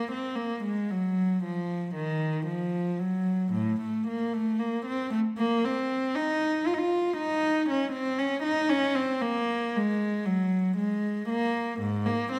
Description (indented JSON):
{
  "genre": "classical, baroque-style suite movement for unaccompanied cello",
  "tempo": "58 BPM",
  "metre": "4/4",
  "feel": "rubato",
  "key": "Bb minor",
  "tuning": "A4 = 440 Hz",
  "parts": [
    { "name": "warm cello", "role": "solo", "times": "0.0-12.4 s", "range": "Ab2 to F4", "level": "-28 LUFS", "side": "equal", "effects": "none" }
  ],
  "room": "wet recital hall reverb, RT60 1.3 s",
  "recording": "none",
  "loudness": "-28 LUFS",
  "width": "mono",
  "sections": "0.0-12.4 A section",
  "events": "none",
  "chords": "none"
}